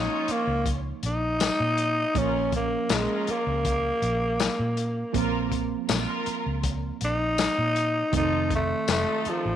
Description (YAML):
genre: straight-eighth soul blues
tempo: 80 BPM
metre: 4/4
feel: straight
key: Bb harmonic minor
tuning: A4 = 440 Hz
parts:
  - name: growling tenor saxophone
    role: melody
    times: 0.0-9.6 s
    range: F3 to Eb4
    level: -26 LUFS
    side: equal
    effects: slapback echo
  - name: reed electric piano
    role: accompaniment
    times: 0.0-9.6 s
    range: Eb3 to Eb4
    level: -33 LUFS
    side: right 14 dB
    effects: none
  - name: rich symphonic string section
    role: sustained chords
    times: 0.0-9.6 s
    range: Bb3 to Db5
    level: -34 LUFS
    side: left 1 dB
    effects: none
  - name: vintage muted fingered electric bass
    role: bass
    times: 0.0-9.6 s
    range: F1 to Bb2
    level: -30 LUFS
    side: equal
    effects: none
  - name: crunchy breakbeat drum kit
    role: drums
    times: 0.3-9.4 s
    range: hi-hat, kick drum, snare drum, tambourine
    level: -29 LUFS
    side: left 5 dB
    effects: none
room: moderate spring reverb, RT60 1.6 s, small room reverb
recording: 1960s-style stereo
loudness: -23 LUFS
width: side -10 dB against mid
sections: 0.0-9.6 A section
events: tenor saxophone solo 0.0-9.6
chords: 0.0 Bbm; 8.1 F7